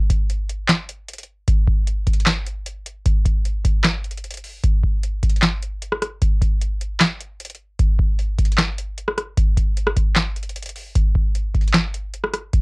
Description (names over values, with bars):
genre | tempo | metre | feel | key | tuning
hip hop | 152 BPM | 4/4 | half-time | none | none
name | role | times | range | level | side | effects
booming analog drum machine | drums | 0.1-12.6 s | handclaps, hi-hat, kick drum, rim click, snare drum | -18 LUFS | equal | overdrive, cassette tape
room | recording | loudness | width
light reverb | home recording on cassette | -18 LUFS | side -31 dB against mid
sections
0.0-12.6 A section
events
none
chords
none